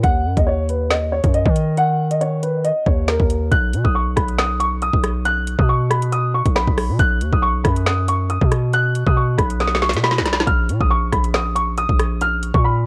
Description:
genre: hip hop, drill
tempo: 138 BPM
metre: 4/4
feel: half-time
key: unclear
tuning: A4 = 440 Hz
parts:
  - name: dark concert grand piano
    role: melody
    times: 0.0-12.8 s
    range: Bb4 to F#6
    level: -23 LUFS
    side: equal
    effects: cassette tape, tape echo
  - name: distorted 808-style bass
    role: bass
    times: 0.0-12.9 s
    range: Bb1 to Eb3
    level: -23 LUFS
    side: equal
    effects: distortion
  - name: drill drum kit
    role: drums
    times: 0.0-12.6 s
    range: hi-hat, kick drum, rim click, snare drum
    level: -21 LUFS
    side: equal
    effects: none
room: little or no reverb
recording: home recording on cassette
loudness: -18 LUFS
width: mono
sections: 0.0-3.5 A section; 3.5-12.9 B section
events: drum fill 9.6-10.5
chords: 0.0 N.C.; 3.5 B; 10.5 Bbsus4

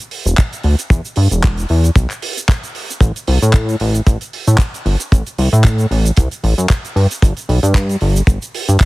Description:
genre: nu-disco, nu disco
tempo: 114 BPM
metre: 4/4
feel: swing 55% on 16ths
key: unclear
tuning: A4 = 440 Hz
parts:
  - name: damped 70s drum kit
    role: drums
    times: 0.0-8.9 s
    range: handclaps, hi-hat, shaker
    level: -22 LUFS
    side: right 1 dB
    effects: studio reverb
  - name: chorused synth bass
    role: bass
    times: 0.3-8.8 s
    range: E1 to A2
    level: -13 LUFS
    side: equal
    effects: none
  - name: kick drum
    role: drums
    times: 0.4-8.9 s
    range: none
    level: -11 LUFS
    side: equal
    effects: studio reverb
room: little or no reverb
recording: heavily compressed radio sound, multiband compression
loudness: -12 LUFS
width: side -20 dB against mid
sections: 0.0-8.9 A section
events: none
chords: none

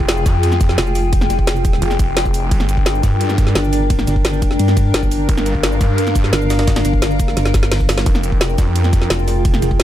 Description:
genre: dark technical drum and bass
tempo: 173 BPM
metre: 4/4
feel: straight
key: unclear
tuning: A4 = 440 Hz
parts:
  - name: dark analog pad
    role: sustained chords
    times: 0.0-9.8 s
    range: D4 to G5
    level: -23 LUFS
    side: left 3 dB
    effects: wide subtle chorus, sidechain pumping
  - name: snarling distorted saw bass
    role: bass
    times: 0.0-9.1 s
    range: F1 to G2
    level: -18 LUFS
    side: equal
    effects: distortion, tube saturation
  - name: electronic kick drum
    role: drums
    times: 0.0-9.8 s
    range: none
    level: -16 LUFS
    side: equal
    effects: none
  - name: granular cloud pad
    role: texture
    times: 0.0-9.8 s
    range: D4 to G5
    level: -23 LUFS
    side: equal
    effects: built-in reverb, sidechain pumping
  - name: drum and bass drum kit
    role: drums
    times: 0.1-9.8 s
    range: hi-hat, shaker, snare drum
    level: -21 LUFS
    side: equal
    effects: none
  - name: jungle sampler-style drum kit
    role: drums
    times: 0.1-9.8 s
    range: hi-hat, ride cymbal, snare drum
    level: -30 LUFS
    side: right 1 dB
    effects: high-pass filter on cymbals, high-pass filter on snare, high-pass filter on hats
  - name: pulsing pluck wobble bass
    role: bass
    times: 0.8-9.8 s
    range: F1 to G2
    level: -17 LUFS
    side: equal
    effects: chorus
room: digital ambience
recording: dark, warm production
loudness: -13 LUFS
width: side -12 dB against mid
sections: 0.0-9.8 A section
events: drum fill 7.4-8.1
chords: 0.0 Fmadd9; 2.5 Gm; 8.1 Fmadd9

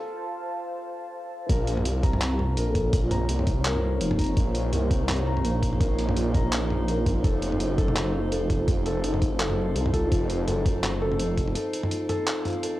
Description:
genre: half-time drum and bass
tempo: 167 BPM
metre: 4/4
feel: swing 56% on 16ths, half-time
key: Bb harmonic minor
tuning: A4 = 439 Hz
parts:
  - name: deep dark ambient pad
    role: sustained chords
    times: 0.0-12.8 s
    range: Bb3 to A5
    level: -33 LUFS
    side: equal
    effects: chorus, built-in reverb, sidechain pumping, cassette tape
  - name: felt-muted upright piano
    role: arpeggios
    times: 0.0-12.8 s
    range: F4 to Bb5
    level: -33 LUFS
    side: left 2 dB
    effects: cassette tape, tape echo
  - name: dark detuned saw bass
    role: bass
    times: 1.5-11.6 s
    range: F1 to C2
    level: -26 LUFS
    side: equal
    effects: none
  - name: boom bap sampler-style drum kit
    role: drums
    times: 1.5-12.7 s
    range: handclaps, hi-hat, toms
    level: -31 LUFS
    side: equal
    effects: none
  - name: electronic kick drum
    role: drums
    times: 1.5-11.5 s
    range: none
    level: -24 LUFS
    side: equal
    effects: high-pass filter on kick, high-pass filter on room
  - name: metallic inharmonic drone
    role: texture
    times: 3.1-12.8 s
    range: Eb4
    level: -35 LUFS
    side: right 3 dB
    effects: chorus, built-in reverb, cassette tape
  - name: vibraphone with soft mallets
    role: melody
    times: 2.7-4.2, 8.4-10.1 s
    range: Eb4 to A4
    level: -34 LUFS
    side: left 1 dB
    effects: cassette tape, tape echo
room: light reverb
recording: home recording on cassette, high-pass filter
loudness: -23 LUFS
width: side -15 dB against mid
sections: 0.0-1.5 A section; 1.5-12.8 B section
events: build-up 0.0-1.5; filter sweep 0.0-1.5; break 0.1-1.5, 11.6-12.8; drop 1.5-12.8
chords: 0.0 F; 1.5 Bbm; 7.2 F

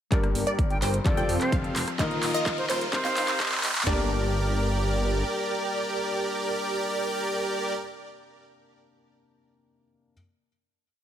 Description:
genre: EDM, festival progressive house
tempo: 128 BPM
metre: 4/4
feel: straight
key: G minor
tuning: A4 = 440 Hz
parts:
  - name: felt-muted upright piano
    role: accompaniment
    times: 0.1-10.1 s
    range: G2 to Bb4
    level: -34 LUFS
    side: left 4 dB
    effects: sidechain pumping, digital delay
  - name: wide unison pluck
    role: arpeggios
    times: 0.1-7.7 s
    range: C5 to G5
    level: -33 LUFS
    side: equal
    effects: sidechain pumping, digital delay
  - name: dense compressed supersaw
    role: riff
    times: 0.1-7.7 s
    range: C4 to G5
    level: -29 LUFS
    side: right 1 dB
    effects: sidechain pumping, low-pass filter, digital delay
  - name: wide detuned saw bass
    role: bass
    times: 0.1-5.2 s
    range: Eb1 to F2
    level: -30 LUFS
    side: equal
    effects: chorus, sidechain pumping
  - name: big-room dance drum kit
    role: drums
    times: 0.1-4.0 s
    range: kick drum, snare drum, toms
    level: -27 LUFS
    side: equal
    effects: none
  - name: big-room dance drum kit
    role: drums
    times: 0.1-3.9 s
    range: handclaps, hi-hat, rim click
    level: -31 LUFS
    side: equal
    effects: overdrive
  - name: riser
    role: sound effects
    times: 1.6-3.9 s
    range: none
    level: -36 LUFS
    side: right 1 dB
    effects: none
  - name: breathy bright concert flute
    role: melody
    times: 0.7-3.6 s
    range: C5 to G5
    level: -32 LUFS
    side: equal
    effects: digital delay
room: light reverb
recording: high-pass filter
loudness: -24 LUFS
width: side -10 dB against mid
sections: 0.1-3.9 build; 3.9-7.6 final chord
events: build-up 0.1-3.9; drum fill 0.1-3.9; filter sweep on supersaw synth 0.1-3.9; filter sweep 0.1-3.9; riser 1.6-3.9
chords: 0.1 Gm; 1.1 Fadd9; 2.0 Ebsus2; 2.9 Cm7; 3.9 Gm

